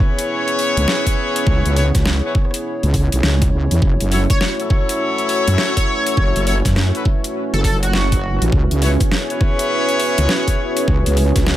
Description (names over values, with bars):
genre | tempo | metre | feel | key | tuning
glitch hop | 102 BPM | 4/4 | swing 63% on 16ths | F# minor | A4 = 441 Hz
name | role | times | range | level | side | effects
dark analog pad | sustained chords | 0.0-11.6 s | A3 to C#5 | -26 LUFS | left 2 dB | chorus, sidechain pumping
bright horn section | stabs | 0.0-11.1 s | E4 to C#5 | -21 LUFS | left 2 dB | sidechain pumping, dub echo
dubstep drum kit | drums | 0.0-11.6 s | hi-hat, rim click, snare drum | -22 LUFS | equal | overdrive, small room ambience
electronic kick drum | drums | 0.0-11.4 s | none | -17 LUFS | equal | overdrive, small room ambience
warbly tape-like pad | texture | 0.3-11.6 s | C#4 to E5 | -26 LUFS | right 3 dB | chorus, built-in reverb, sidechain pumping
wobble bass | bass | 0.8-11.6 s | F#1 to F#2 | -16 LUFS | equal | chorus
sync lead | melody | 4.3-8.4 s | F#4 to C#5 | -25 LUFS | right 1 dB | analog chorus, dub echo
room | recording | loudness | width
digital ambience | none | -14 LUFS | side -13 dB against mid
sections
0.0-11.6 A section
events
none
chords
0.0 C#m7; 3.8 F#m7; 8.5 C#m7